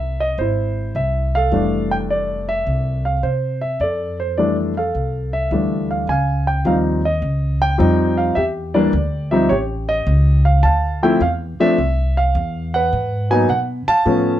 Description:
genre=jazz piano trio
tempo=105 BPM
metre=4/4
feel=swing 68% on 8ths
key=F major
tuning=A4 = 440 Hz
part: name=warm concert grand piano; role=melody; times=0.0-14.4 s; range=E3 to A5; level=-18 LUFS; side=equal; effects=none
part: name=upright bass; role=bass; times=0.0-14.4 s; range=F1 to C3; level=-20 LUFS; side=equal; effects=none
room=light reverb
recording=none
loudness=-16 LUFS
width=side -12 dB against mid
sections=0.0-6.1 A section; 6.1-14.4 B section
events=none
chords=0.0 Caug; 1.5 Fmaj13; 6.1 Dbmaj9#11; 8.4 Em7; 9.5 A7#11; 10.6 Dm9; 12.9 Abm7

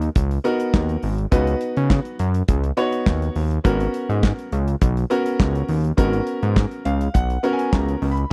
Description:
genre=early-eighties boogie funk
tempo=103 BPM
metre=4/4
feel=straight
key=G# minor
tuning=A4 = 440 Hz
part: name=fat analog bass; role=bass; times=0.0-8.3 s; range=G#1 to C#3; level=-23 LUFS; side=equal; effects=none
part: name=modern studio drum kit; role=drums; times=0.0-8.3 s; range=handclaps, hi-hat, kick drum, snare drum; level=-21 LUFS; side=equal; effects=none
part: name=clear grand piano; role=accompaniment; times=0.4-8.3 s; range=B3 to B5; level=-26 LUFS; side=equal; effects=none
room=studio reverb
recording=dry, close 1970s-style studio recording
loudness=-21 LUFS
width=mono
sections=0.0-8.3 A section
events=grand piano fill 6.6-8.3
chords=0.0 G#m11

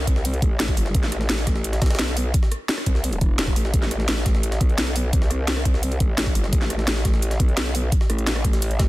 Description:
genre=dark technical drum and bass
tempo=172 BPM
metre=4/4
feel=straight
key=A minor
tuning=A4 = 440 Hz
part: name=growl bass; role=bass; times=0.0-8.9 s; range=E1 to C2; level=-24 LUFS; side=equal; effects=chorus, overdrive
part: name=drum and bass drum kit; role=drums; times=0.1-8.9 s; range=hi-hat, rim click, snare drum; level=-26 LUFS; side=equal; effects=overdrive
part: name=electronic kick drum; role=drums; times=0.1-8.9 s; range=none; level=-20 LUFS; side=equal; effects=overdrive
part: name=jungle sampler-style drum kit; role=drums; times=0.1-8.9 s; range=hi-hat, snare drum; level=-33 LUFS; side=equal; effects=high-pass filter on snare, high-pass filter on hats
room=little or no reverb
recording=dense, heavily limited modern master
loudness=-19 LUFS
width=side -18 dB against mid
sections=0.0-8.9 A section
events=none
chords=none

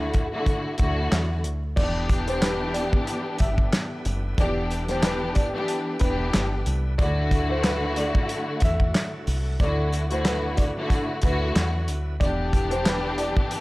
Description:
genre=hip hop, boom-bap hip-hop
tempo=92 BPM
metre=4/4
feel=swing 55% on 16ths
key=E minor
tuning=A4 = 440 Hz
part: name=warm studio string section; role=accompaniment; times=0.0-13.6 s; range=D3 to G4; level=-27 LUFS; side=left 1 dB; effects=cassette tape, high-pass filter, low-pass filter
part: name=deep dub fingered electric bass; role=bass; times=0.0-13.3 s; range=E1 to E2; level=-27 LUFS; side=equal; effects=none
part: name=warm soul drum kit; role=drums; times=0.1-13.6 s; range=crash cymbal, handclaps, hi-hat, kick drum, snare drum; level=-24 LUFS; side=equal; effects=none
part: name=dark upright piano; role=melody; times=1.8-13.6 s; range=B4 to E5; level=-31 LUFS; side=equal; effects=high-pass filter, low-pass filter
part: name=bright tonewheel organ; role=sustained chords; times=1.8-13.6 s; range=D3 to E4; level=-40 LUFS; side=equal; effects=none
part: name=sleigh bells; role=percussion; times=1.8-13.6 s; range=none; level=-44 LUFS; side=right 2 dB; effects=none
room=small room ambience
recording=dry, gritty hardware recording, vinyl crackle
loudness=-22 LUFS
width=side -20 dB against mid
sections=0.0-1.8 A section; 1.8-13.6 B section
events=break 0.0-1.8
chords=0.0 Dadd9; 1.8 Em7; 7.0 Dadd9; 12.2 Em7

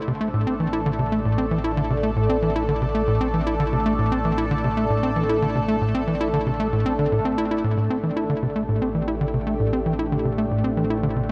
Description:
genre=ambient, sequencer-driven space music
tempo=115 BPM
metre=4/4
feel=straight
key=A minor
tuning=A4 = 439 Hz
part: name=lush unison pad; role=sustained chords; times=0.0-11.3 s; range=A3 to D5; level=-27 LUFS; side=equal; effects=chorus, phaser
part: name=fat analog bass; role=bass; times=0.0-11.3 s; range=A1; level=-33 LUFS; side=equal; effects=none
part: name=tight sequencer bass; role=riff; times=0.1-11.3 s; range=A2 to E4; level=-25 LUFS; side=equal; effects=delay
room=moderate huge ambient reverb, RT60 9.2 s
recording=cassette tape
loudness=-23 LUFS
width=mono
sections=0.0-7.8 A section; 7.8-11.3 B section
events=none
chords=0.0 Am

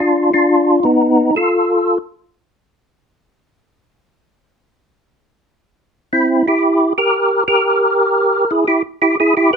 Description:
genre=jazz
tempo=118 BPM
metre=4/4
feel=swing 68% on 8ths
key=unclear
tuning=A4 = 440 Hz
part: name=percussive tonewheel organ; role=solo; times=0.0-2.0, 6.1-9.6 s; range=B3 to B4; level=-12 LUFS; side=equal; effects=slow rotary speaker, chorus vibrato
room=light reverb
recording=close, detailed microphones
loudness=-12 LUFS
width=side -6 dB against mid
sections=0.0-9.6 A section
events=none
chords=0.0 Bdim; 1.5 N.C.; 5.6 C7

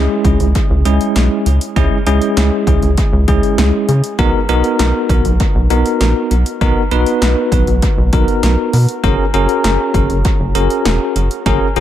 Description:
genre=synth-pop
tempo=99 BPM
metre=4/4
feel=straight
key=C# dorian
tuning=A4 = 436 Hz
part: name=bell-like tine electric piano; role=accompaniment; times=0.0-11.8 s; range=G#3 to B4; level=-16 LUFS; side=left 1 dB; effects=medium stereo tremolo, tape echo
part: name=rubbery square bass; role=bass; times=0.0-11.8 s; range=E1 to C#3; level=-14 LUFS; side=equal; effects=none
part: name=punchy analog drum machine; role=drums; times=0.2-11.8 s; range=hi-hat, kick drum, snare drum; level=-17 LUFS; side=equal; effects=tape echo
room=moderate spring reverb, RT60 2.3 s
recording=echo-heavy mix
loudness=-11 LUFS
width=side -11 dB against mid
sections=0.0-11.8 A section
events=none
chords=0.0 C#m; 4.2 Bmaj7; 9.0 F#add9

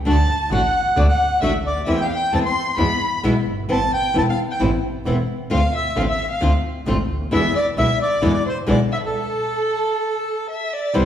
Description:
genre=tango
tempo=132 BPM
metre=4/4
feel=rubato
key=A minor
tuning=A4 = 439 Hz
part: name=clear double bass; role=bass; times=0.0-11.1 s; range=E1 to E2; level=-22 LUFS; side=equal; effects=none
part: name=bandoneon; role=melody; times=0.1-10.5 s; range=A4 to C6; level=-23 LUFS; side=right 1 dB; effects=none
part: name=warm violin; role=second line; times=0.1-11.1 s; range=A4 to C6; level=-25 LUFS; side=left 2 dB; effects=none
part: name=flamenco guitar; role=accompaniment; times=0.1-11.0 s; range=B2 to F#4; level=-22 LUFS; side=left 1 dB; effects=none
room=wet recital hall reverb, RT60 1.7 s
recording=recorded in a church or concert hall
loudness=-17 LUFS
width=side -10 dB against mid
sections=0.0-10.9 A section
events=stop 9.1-10.9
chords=0.1 D; 1.9 Am/E; 2.8 E; 3.7 Amadd9; 5.5 Dm7; 7.3 E7; 9.1 N.C.

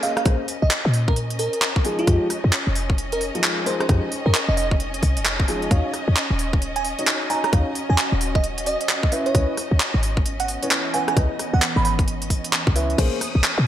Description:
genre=UK garage, two-step garage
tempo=132 BPM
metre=4/4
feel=swing 62% on 16ths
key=Bb minor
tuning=A4 = 440 Hz
part: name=bell-like FM electric piano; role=melody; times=0.0-11.9 s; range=F4 to Cb6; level=-26 LUFS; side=right 3 dB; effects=chorus, ping-pong delay
part: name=dark symphonic violin section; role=sustained chords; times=0.0-13.7 s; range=Db4 to Eb6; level=-31 LUFS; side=equal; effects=sidechain pumping
part: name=dark grand piano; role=stabs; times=0.0-13.2 s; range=F3 to Ab5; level=-28 LUFS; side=left 1 dB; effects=ping-pong delay
part: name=garage drum kit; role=drums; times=0.0-13.6 s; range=crash cymbal, handclaps, hi-hat, rim click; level=-24 LUFS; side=equal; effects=gated reverb
part: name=deep dark ambient pad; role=texture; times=0.5-13.7 s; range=Fb3 to Ab5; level=-36 LUFS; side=right 1 dB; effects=chorus, built-in reverb, sidechain pumping
part: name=short 808-style bass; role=bass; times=0.3-13.7 s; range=Eb1 to Bb2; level=-22 LUFS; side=equal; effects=none
part: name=electronic kick drum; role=drums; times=0.3-13.1 s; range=none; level=-22 LUFS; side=equal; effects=none
room=light reverb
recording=bright 1980s-style digital production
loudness=-19 LUFS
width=side -11 dB against mid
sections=0.0-13.7 A section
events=fade-in on ambient pad 0.0-13.7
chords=0.0 Bbm9; 1.8 Fm9; 5.7 Ebm9; 9.1 Dbm9; 13.0 Bbm9

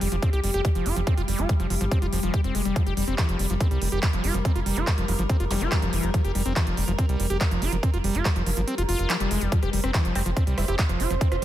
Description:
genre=psychedelic trance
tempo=142 BPM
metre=4/4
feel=straight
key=unclear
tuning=A4 = 443 Hz
part: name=evolving wavetable pad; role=sustained chords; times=0.0-11.4 s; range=G3 to C5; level=-32 LUFS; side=left 1 dB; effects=chorus, built-in reverb, sidechain pumping
part: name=overdriven acid bass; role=riff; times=0.0-11.4 s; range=E3 to G4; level=-29 LUFS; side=moving between left 5 dB and right 6 dB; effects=distortion, auto-pan, sidechain pumping, digital delay
part: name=round analog bass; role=bass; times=0.0-11.4 s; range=F1 to C2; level=-26 LUFS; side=equal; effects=none
part: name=big-room dance drum kit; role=drums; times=0.0-11.4 s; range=handclaps, hi-hat, rim click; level=-31 LUFS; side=right 1 dB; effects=overdrive
part: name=electronic kick drum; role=drums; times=0.2-11.3 s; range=none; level=-22 LUFS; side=equal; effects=none
part: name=zap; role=sound effects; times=5.5-5.6 s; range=none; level=-36 LUFS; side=equal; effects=none
part: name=resonant blip pluck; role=second line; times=9.9-10.8 s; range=C4 to E4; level=-38 LUFS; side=right 2 dB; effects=phaser, sidechain pumping, high-pass filter, dub echo
room=little or no reverb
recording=none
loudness=-22 LUFS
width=side -13 dB against mid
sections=0.0-11.4 A section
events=kick drops out 8.7-9.5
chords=0.0 F5

